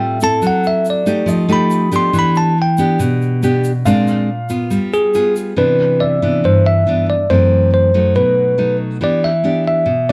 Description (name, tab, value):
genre	bossa nova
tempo	140 BPM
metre	4/4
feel	straight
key	C major from 5.6 s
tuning	A4 = 441 Hz
part	bell-like tine electric piano	melody	0.0-10.1 s	Ab4 to C6	-18 LUFS	equal	none
part	nylon-string guitar	accompaniment	0.0-10.1 s	F#2 to A4	-17 LUFS	equal	none
part	warm concert grand piano	accompaniment	0.0-7.3 s	Eb5 to F5	-30 LUFS	equal	none
part	egg shaker	percussion	0.2-5.6 s	none	-40 LUFS	equal	none
room	moderate studio reverb, RT60 0.9 s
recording	dark, warm production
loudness	-15 LUFS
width	mono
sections	0.0-5.6 A section; 5.6-10.1 B section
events	tine electric piano solo 0.0-5.6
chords	0.4 F#m7b5; 1.3 F9; 2.1 Em7; 3.9 Bb9; 4.7 G7b9; 5.6 Cmaj9; 7.3 F#m7b5; 8.2 B7; 9.0 Em7